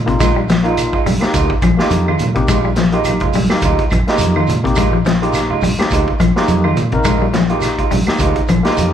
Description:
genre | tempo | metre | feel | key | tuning
afrobeat | 105 BPM | 4/4 | swing 56% on 16ths | unclear | A4 = 438 Hz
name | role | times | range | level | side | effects
fingered electric bass | bass | 0.0-8.9 s | Bb1 to Bb2 | -20 LUFS | equal | none
overdriven tine electric piano | accompaniment | 0.1-8.9 s | Bb3 to Bb4 | -20 LUFS | left 2 dB | medium tremolo
semi-hollow electric guitar | arpeggios | 0.1-8.7 s | C3 to Ab3 | -18 LUFS | left 6 dB | none
vintage drum kit | drums | 0.1-8.9 s | hi-hat, kick drum, snare drum | -19 LUFS | equal | none
electric guitar through a small old amp | stabs | 0.2-8.8 s | Eb3 to F4 | -21 LUFS | right 9 dB | none
claves | percussion | 0.2-8.7 s | none | -29 LUFS | right 2 dB | none
shekere | percussion | 0.2-8.9 s | none | -26 LUFS | right 2 dB | none
congas | percussion | 0.5-8.9 s | none | -22 LUFS | right 4 dB | none
room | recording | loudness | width
moderate large studio reverb, RT60 1.2 s | band playing live in one room | -12 LUFS | side -9 dB against mid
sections
0.0-8.9 A section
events
none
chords
0.0 Bb7sus4

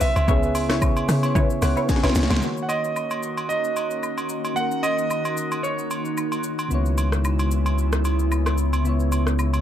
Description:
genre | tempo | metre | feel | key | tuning
amapiano | 112 BPM | 4/4 | swing 55% on 16ths | Eb phrygian | A4 = 440 Hz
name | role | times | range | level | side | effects
clear concert grand piano | melody | 0.0-6.4 s | Db5 to Gb5 | -26 LUFS | right 3 dB | tape echo
soft electric-piano-like synth keys | accompaniment | 0.0-9.6 s | Db3 to Ab5 | -28 LUFS | equal | chorus
tight log drum bass | bass | 0.0-2.4 s | Cb2 to Db3 | -23 LUFS | left 1 dB | none
afro-pop drum kit | drums | 0.0-9.6 s | hi-hat, kick drum, rim click, shaker, snare drum | -26 LUFS | equal | none
agogo bells and woodblock | percussion | 0.2-9.6 s | none | -31 LUFS | right 2 dB | none
punchy chord stab | stabs | 0.3-2.1 s | Fb4 to Db5 | -30 LUFS | left 1 dB | chorus, tape echo
glassy FM pad | sustained chords | 2.8-9.6 s | Db3 to Gb4 | -28 LUFS | equal | ensemble chorus, built-in reverb
saturated sub bass | bass | 6.7-9.6 s | Db2 | -21 LUFS | equal | none
room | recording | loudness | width
little or no reverb | dry, gritty hardware recording, transformer saturation | -20 LUFS | side -10 dB against mid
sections
0.0-2.4 A section; 2.4-9.6 B section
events
drop 0.0-2.4; synth keys fill 1.4-2.4; drum fill 1.9-2.4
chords
0.0 Dbm7; 2.4 Ebm7; 6.7 Dbm7

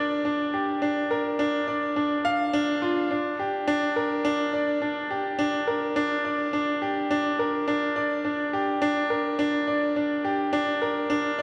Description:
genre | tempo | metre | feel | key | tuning
electronica | 105 BPM | 4/4 | straight | unclear | A4 = 441 Hz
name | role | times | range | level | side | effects
bright grand piano | solo | 0.0-11.4 s | D4 to F5 | -26 LUFS | equal | none
room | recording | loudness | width
wet concert hall reverb, RT60 2.4 s | none | -26 LUFS | mono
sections
0.0-11.4 A section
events
none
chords
none

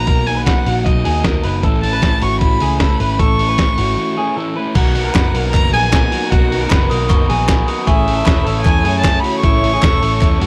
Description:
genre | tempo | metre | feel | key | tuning
jangly indie pop | 154 BPM | 4/4 | straight | B major | A4 = 440 Hz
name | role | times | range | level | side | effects
dark violin | melody | 0.0-10.5 s | D#5 to C#6 | -23 LUFS | equal | none
crunchy overdriven guitar | accompaniment | 0.0-10.5 s | A2 to A#4 | -24 LUFS | equal | none
electric guitar through a small old amp | arpeggios | 0.0-10.5 s | E4 to B4 | -25 LUFS | equal | none
vintage muted picked electric bass | bass | 0.0-10.5 s | E1 to F#2 | -22 LUFS | equal | none
lo-fi sampler-style drum kit | drums | 0.1-10.5 s | crash cymbal, hi-hat, kick drum, snare drum | -18 LUFS | equal | none
glockenspiel with hard plastic mallets | second line | 4.7-10.5 s | A#5 to E6 | -30 LUFS | equal | none
dark studio string section | sustained chords | 4.8-10.5 s | C#3 to C#5 | -28 LUFS | equal | none
group handclap | percussion | 5.1-10.3 s | none | -33 LUFS | equal | none
room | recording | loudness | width
light reverb | none | -15 LUFS | mono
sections
0.0-4.8 A section; 4.8-10.5 B section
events
break 4.0-4.8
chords
0.0 Bmaj7; 1.6 A; 4.8 Bmaj7; 7.9 A

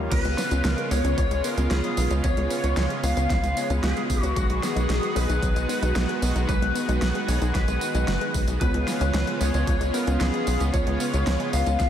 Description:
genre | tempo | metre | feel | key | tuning
synthwave | 113 BPM | 4/4 | straight | unclear | A4 = 440 Hz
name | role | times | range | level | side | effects
lush unison pad | sustained chords | 0.0-11.9 s | C#3 to F#4 | -30 LUFS | right 1 dB | chorus, sidechain pumping
analog pluck | arpeggios | 0.0-11.9 s | E#3 to D#4 | -34 LUFS | left 3 dB | chorus, diffuse ambient delay
mellow FM electric piano | stabs | 0.0-11.9 s | G#3 to E#5 | -33 LUFS | right 3 dB | chorus, phaser
tight sequencer bass | bass | 0.0-11.9 s | F#1 to C#2 | -24 LUFS | equal | tube saturation, sidechain pumping
lead guitar through a small cranked amp | melody | 0.1-11.9 s | F#4 to E#5 | -28 LUFS | left 2 dB | overdrive, lush chorus, diffuse ambient delay
electronic kick drum | drums | 0.1-11.9 s | none | -26 LUFS | equal | overdrive
pop drum kit | drums | 0.1-11.9 s | crash cymbal, hi-hat, snare drum, tambourine | -32 LUFS | right 1 dB | overdrive
room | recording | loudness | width
moderate lush hall reverb, RT60 2.5 s | dreamy mix soaked in reverb | -21 LUFS | side -10 dB against mid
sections
0.1-11.9 A section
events
none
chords
0.1 C#7; 4.4 G#m7/B; 8.6 C#7

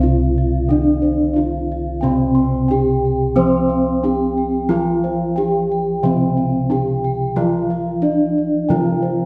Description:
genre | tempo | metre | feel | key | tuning
Javanese gamelan | 90 BPM | 4/4 | straight | unclear | A4 = 440 Hz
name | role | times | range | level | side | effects
gamelan-type bronze metallophone | melody | 0.0-9.3 s | C4 to C5 | -22 LUFS | equal | none
gamelan-type bronze metallophone | accompaniment | 0.0-9.3 s | C3 to C4 | -23 LUFS | equal | none
gamelan-type bossed gongs | arpeggios | 0.0-9.3 s | C5 to C6 | -31 LUFS | equal | none
gamelan-type bronze metallophone | arpeggios | 0.0-9.3 s | C5 to C6 | -31 LUFS | equal | none
gamelan-type bossed gongs | bass | 0.0-9.3 s | C2 to F4-35c | -24 LUFS | equal | none
room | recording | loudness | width
wet scoring stage reverb, RT60 1.4 s | recorded in a church or concert hall | -18 LUFS | mono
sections
0.0-9.3 A section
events
none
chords
none

